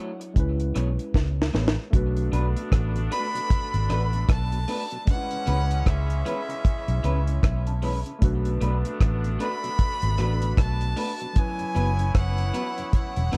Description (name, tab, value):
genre	lovers rock reggae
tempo	76 BPM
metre	4/4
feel	swing 59% on 16ths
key	B dorian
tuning	A4 = 440 Hz
part	tine electric piano	accompaniment	0.0-13.4 s	F#3 to A5	-38 LUFS	equal	lush chorus
part	electric guitar through a small old amp	stabs	0.0-13.4 s	G#3 to C#5	-37 LUFS	equal	spring reverb, tape echo
part	deep reggae drum kit	drums	0.2-13.4 s	hi-hat, kick drum, rim click, snare drum	-26 LUFS	equal	none
part	vintage muted fingered electric bass	bass	0.4-13.4 s	E1 to C#2	-27 LUFS	equal	none
part	clear horn section	second line	1.9-13.4 s	C#3 to E4	-40 LUFS	equal	tape echo
part	mellow tonewheel organ	accompaniment	2.2-13.4 s	F#2 to E4	-42 LUFS	equal	none
part	clear violin	melody	3.1-13.4 s	E5 to B5	-34 LUFS	equal	tape echo
room	light reverb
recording	dark, warm production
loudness	-25 LUFS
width	mono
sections	0.0-1.9 A section; 1.9-13.4 B section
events	drum fill 1.1-1.9; tine electric piano fill 7.0-8.2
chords	0.4 C#m7; 1.9 Bm7; 5.1 C#m7; 8.2 Bm7; 11.4 F#7sus4